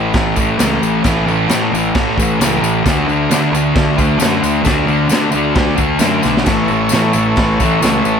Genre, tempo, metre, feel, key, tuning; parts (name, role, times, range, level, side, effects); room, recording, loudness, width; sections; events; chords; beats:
garage rock duo or trio; 132 BPM; 4/4; straight; A4 = 440 Hz
fuzz guitar; riff; 0.0-8.2 s; A2 to D4; -14 LUFS; equal; distortion
fuzz picked electric bass; bass; 0.0-8.2 s; A1 to D3; -20 LUFS; equal; overdrive
vintage drum kit; drums; 0.1-7.9 s; crash cymbal, kick drum, snare drum; -18 LUFS; equal
tambourine; percussion; 0.1-8.2 s; -27 LUFS; left 9 dB
overdriven combo organ; sustained chords; 6.5-8.2 s; A4 to E5; -19 LUFS; equal
light reverb; -12 LUFS; side -7 dB against mid
0.0-8.2 A section
drum fill 6.2
0.0 A; 2.8 D5; 6.5 A
0.13 0.58 | 1.03 1.49 1.94 2.39 | 2.85 3.30 3.75 4.20 | 4.66 5.11 5.56 6.01 | 6.47 6.92 7.37 7.83